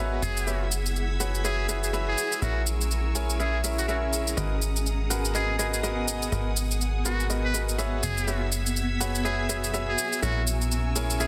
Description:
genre	piano house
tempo	123 BPM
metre	4/4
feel	swing 59% on 16ths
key	unclear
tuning	A4 = 441 Hz
part	rich studio string section	sustained chords	0.0-11.3 s	G#4 to B6	-40 LUFS	equal	vintage 12-bit sampler grit
part	bright upright piano	riff	0.0-11.3 s	E4 to G#5	-34 LUFS	equal	none
part	plucky analog bass	bass	0.0-11.3 s	F#1 to A#1	-31 LUFS	equal	none
part	granular cloud pad	texture	0.0-11.3 s	B3 to B5	-38 LUFS	equal	built-in reverb
part	trumpet with metal mute	melody	0.2-11.3 s	F#4 to B4	-35 LUFS	equal	tape echo
part	shaker	drums	0.2-11.3 s	none	-34 LUFS	equal	overdrive
room	light reverb, digital ambience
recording	dense, heavily limited modern master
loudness	-27 LUFS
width	mono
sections	0.0-11.3 A section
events	none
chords	0.2 F#9sus4; 2.4 A#m7b5; 4.4 G#m9; 8.0 F#9sus4; 10.2 A#m7b5

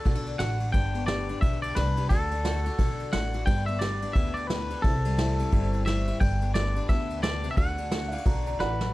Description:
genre	honky-tonk and classic country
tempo	176 BPM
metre	4/4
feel	swing 60% on 8ths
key	G major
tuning	A4 = 441 Hz
part	twangy electric guitar	melody	0.0-8.9 s	A4 to G5	-32 LUFS	left 1 dB	none
part	picked steel-string acoustic guitar	accompaniment	0.0-8.9 s	G2 to G4	-35 LUFS	left 5 dB	none
part	tack piano	accompaniment	0.0-8.9 s	D4 to E5	-38 LUFS	right 4 dB	none
part	upright bass	bass	0.1-8.9 s	G1 to D2	-29 LUFS	equal	none
part	vintage brush drum kit	drums	0.1-8.9 s	kick drum, ride cymbal, snare drum	-28 LUFS	equal	none
part	warm upright piano	second line	8.1-8.9 s	D5 to Bb5	-34 LUFS	right 5 dB	none
room	light reverb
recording	dark, warm production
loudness	-24 LUFS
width	side -18 dB against mid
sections	0.0-8.9 A section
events	drum fill 8.6-8.9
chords	0.0 D; 0.7 G; 2.1 D; 3.5 G; 4.8 C; 6.2 G; 7.6 D

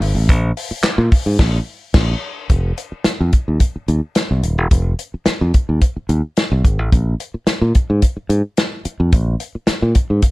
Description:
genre	funk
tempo	109 BPM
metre	4/4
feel	straight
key	unclear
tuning	A4 = 436 Hz
part	modern bright fingered electric bass	bass	0.0-10.2 s	Eb1 to Bb2	-16 LUFS	equal	none
part	warm soul drum kit	drums	0.0-10.3 s	crash cymbal, handclaps, hi-hat, kick drum, snare drum	-15 LUFS	equal	none
room	little or no reverb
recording	dark, warm production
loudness	-15 LUFS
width	side -20 dB against mid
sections	0.0-2.5 A section; 2.5-10.3 B section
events	band accent 1.4-2.5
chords	none

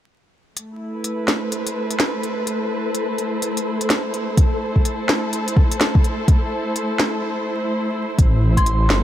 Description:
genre	future garage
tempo	126 BPM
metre	4/4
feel	swing 62% on 16ths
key	A minor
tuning	A4 = 439 Hz
part	muted chamber string section	sustained chords	0.6-9.0 s	A3 to C5	-24 LUFS	equal	sidechain pumping, low-pass filter
part	organic electronic drum kit	drums	0.6-9.0 s	claves, hi-hat, snare drum	-22 LUFS	equal	none
part	wind-like tuned noise texture	texture	0.9-7.2 s	A3 to A4	-28 LUFS	equal	built-in reverb
part	electronic kick drum	drums	4.4-8.6 s	none	-15 LUFS	equal	none
part	swelling detuned saw bass	bass	8.2-9.0 s	G1 to A1	-17 LUFS	equal	sidechain pumping
part	soft synth bell	melody	8.6-8.8 s	C6	-22 LUFS	equal	chorus, vintage 12-bit sampler grit
room	light reverb, digital ambience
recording	vinyl crackle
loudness	-18 LUFS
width	side -12 dB against mid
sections	0.6-8.2 A section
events	break 7.2-8.2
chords	0.6 Am; 8.2 Am7

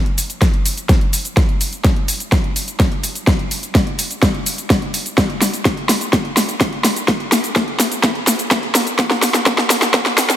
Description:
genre	EDM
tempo	126 BPM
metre	4/4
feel	straight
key	none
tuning	none
part	big-room dance drum kit	drums	0.1-10.4 s	hi-hat, shaker, snare drum	-16 LUFS	equal	overdrive, small room ambience
part	electronic kick drum	drums	0.4-10.0 s	none	-16 LUFS	equal	small room ambience
room	moderate lush hall reverb, RT60 2.2 s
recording	high-pass filter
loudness	-14 LUFS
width	side -11 dB against mid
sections	0.0-10.4 A section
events	build-up 0.0-10.4; drum fill 0.0-10.4; filter sweep 0.0-10.4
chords	none

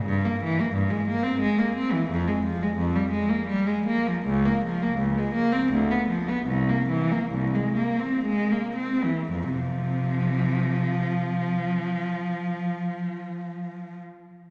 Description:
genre	classical, baroque-style suite movement for unaccompanied cello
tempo	54-90 BPM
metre	3/4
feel	rubato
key	F minor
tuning	A4 = 439 Hz
part	warm cello	solo	0.0-14.0 s	C2 to C4	-26 LUFS	equal	none
room	wet church reverb, RT60 3.1 s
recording	none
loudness	-26 LUFS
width	mono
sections	0.0-9.3 A section; 9.3-14.5 B section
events	slowing down 3.1-9.3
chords	0.1 C7/G; 2.1 Fm; 4.2 Bbm/Db; 5.7 Dm6; 6.5 C7; 9.3 F5

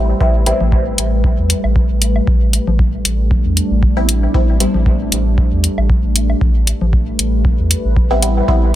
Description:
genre	dub techno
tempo	116 BPM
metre	4/4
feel	swing 54% on 16ths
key	A minor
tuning	A4 = 439 Hz
part	deep dark ambient pad	sustained chords	0.0-8.8 s	G3 to B4	-22 LUFS	equal	chorus, built-in reverb, sidechain pumping
part	filtered dub chord stab	stabs	0.0-0.8, 4.0-4.9, 8.1-8.7 s	G3 to E4	-19 LUFS	equal	phaser, sidechain pumping, dub echo
part	pure sine sub bass	bass	0.0-8.8 s	A1 to E2	-17 LUFS	equal	sidechain pumping
part	electronic kick drum	drums	0.2-8.6 s	none	-15 LUFS	equal	none
part	electronic hi-hat	drums	0.5-8.3 s	none	-15 LUFS	left 2 dB	none
part	congas and woodblock	percussion	0.6-6.9 s	none	-25 LUFS	left 3 dB	sidechain pumping on perc, dub echo
room	little or no reverb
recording	dense, heavily limited modern master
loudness	-12 LUFS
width	side -13 dB against mid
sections	0.0-8.8 A section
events	none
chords	0.0 Am9

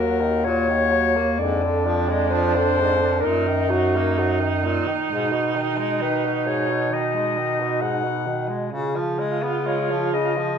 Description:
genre	classical, lyrical piece for single-reed quartet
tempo	65 BPM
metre	4/4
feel	rubato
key	unclear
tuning	A4 = 440 Hz
part	mellow clarinet	melody	0.0-10.6 s	F#4 to F#5	-23 LUFS	left 4 dB	none
part	warm alto saxophone	second line	0.0-10.6 s	D4 to F#4	-26 LUFS	right 8 dB	none
part	clear tenor saxophone	accompaniment	0.0-10.6 s	G#2 to B3	-26 LUFS	left 2 dB	none
part	warm bass clarinet	bass	0.0-10.6 s	D#2 to C#3	-25 LUFS	right 2 dB	none
room	moderate recital hall reverb, RT60 1.6 s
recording	minimal, uncompressed stereo recording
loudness	-19 LUFS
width	side -7 dB against mid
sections	0.0-10.6 A section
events	none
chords	0.0 D#m; 1.4 Ddim/F; 3.2 D#m/F#; 5.1 G#m; 8.7 C#7

